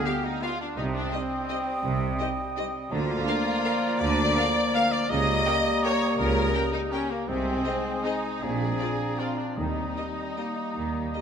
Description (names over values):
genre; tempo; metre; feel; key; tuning
classical; 144-181 BPM; 3/4; rubato; Eb major; A4 = 440 Hz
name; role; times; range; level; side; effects
mellow concert flute; second line; 0.0-11.2 s; G5 to Bb5; -37 LUFS; left 1 dB; none
rich symphonic violin section; second line; 0.0-11.2 s; Bb3 to F5; -31 LUFS; left 3 dB; none
warm clarinet; second line; 0.0-11.2 s; Bb3 to C4; -34 LUFS; left 1 dB; none
warm cor anglais; second line; 0.0-11.2 s; D5 to F5; -36 LUFS; right 1 dB; none
warm bassoon; accompaniment; 0.0-11.2 s; F3 to Ab3; -37 LUFS; right 1 dB; none
clear trumpet; stabs; 0.0-11.2 s; Bb3 to F5; -32 LUFS; right 1 dB; none
rich symphonic violin section; melody; 0.1-11.2 s; D5 to G5; -38 LUFS; left 4 dB; none
rich studio viola section; accompaniment; 0.1-11.2 s; Bb3 to Bb4; -39 LUFS; right 1 dB; none
mellow French horn section; sustained chords; 0.1-11.2 s; G3 to G4; -35 LUFS; left 3 dB; none
mellow tuba; bass; 0.8-11.1 s; Bb1 to Eb2; -36 LUFS; right 3 dB; none
rich symphonic cello section; bass; 0.8-11.1 s; Bb2 to Eb3; -34 LUFS; right 2 dB; none
warm symphonic double bass section; bass; 0.8-11.1 s; Bb1 to Eb2; -34 LUFS; right 2 dB; none
timpani; percussion; 9.6-10.1 s; Eb3; -39 LUFS; left 2 dB; none
room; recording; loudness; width
wet scoring stage reverb, RT60 2.0 s; none; -24 LUFS; side -7 dB against mid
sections
0.0-11.2 A section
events
none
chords
0.0 G7; 0.8 Cm; 2.9 Bb/D; 5.1 Eb7/Db; 7.3 Ab/C; 8.4 Bb9; 9.6 Eb